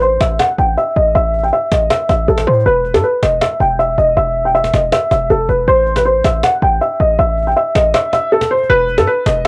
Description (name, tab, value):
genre	hip hop, trap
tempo	159 BPM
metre	4/4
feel	half-time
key	unclear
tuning	A4 = 440 Hz
part	felt-muted upright piano	melody	0.0-9.5 s	A4 to G5	-15 LUFS	equal	low-pass filter, cassette tape
part	hard-hitting 808-style bass	bass	0.0-9.4 s	E1 to A2	-20 LUFS	equal	none
part	cajon	drums	0.0-9.5 s	none	-25 LUFS	equal	cassette tape
room	little or no reverb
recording	home recording on cassette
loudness	-14 LUFS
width	mono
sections	0.0-9.5 A section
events	filter sweep on felt piano 0.0-8.7; kick muted 7.9-8.7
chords	0.0 A5; 2.7 N.C.; 5.7 A5; 8.7 E5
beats	0.02 0.40 0.77 | 1.15 1.53 1.90 2.28 | 2.66 3.04 3.41 3.79 | 4.17 4.55 4.92 5.30 | 5.68 6.05 6.43 6.81 | 7.19 7.57 7.94 8.32 | 8.70 9.07 9.45